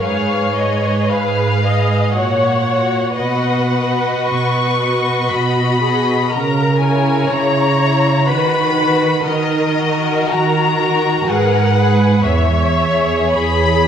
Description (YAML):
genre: classical, slow romantic movement for string orchestra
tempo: 50-63 BPM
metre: 3/4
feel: rubato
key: unclear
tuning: A4 = 441 Hz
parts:
  - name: rich symphonic violin section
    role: melody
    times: 0.0-13.9 s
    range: D#5 to C#6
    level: -20 LUFS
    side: left 5 dB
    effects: none
  - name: rich symphonic violin section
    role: second line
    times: 0.0-13.8 s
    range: E4 to D#5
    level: -20 LUFS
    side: left 3 dB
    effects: none
  - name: warm studio viola section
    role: accompaniment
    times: 0.0-13.9 s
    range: F#4 to D#5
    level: -20 LUFS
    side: right 1 dB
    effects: none
  - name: rich symphonic cello section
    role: bass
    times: 0.0-13.9 s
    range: E2 to D#3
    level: -17 LUFS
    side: right 3 dB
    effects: none
room: wet scoring stage reverb, RT60 1.6 s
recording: none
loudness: -13 LUFS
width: side -8 dB against mid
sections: 0.0-13.9 A section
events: none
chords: 0.0 Fdim/Ab; 2.1 F#/A#; 3.2 B; 6.3 A#dim/C#; 8.3 B/D#; 9.3 D#m; 11.3 G#m; 12.3 C#m7/E